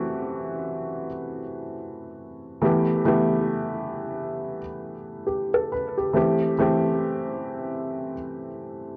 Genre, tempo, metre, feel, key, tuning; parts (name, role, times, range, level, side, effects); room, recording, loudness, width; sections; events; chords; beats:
hip hop; free time; A dorian; A4 = 441 Hz
dark upright piano; solo; 0.0-9.0 s; E3 to B4; -26 LUFS; equal; low-pass filter, analog delay
light reverb, small room ambience; dry, gritty hardware recording; -26 LUFS; mono
0.0-9.0 A section
0.0 Am7; 2.6 G69; 6.2 Am7
free time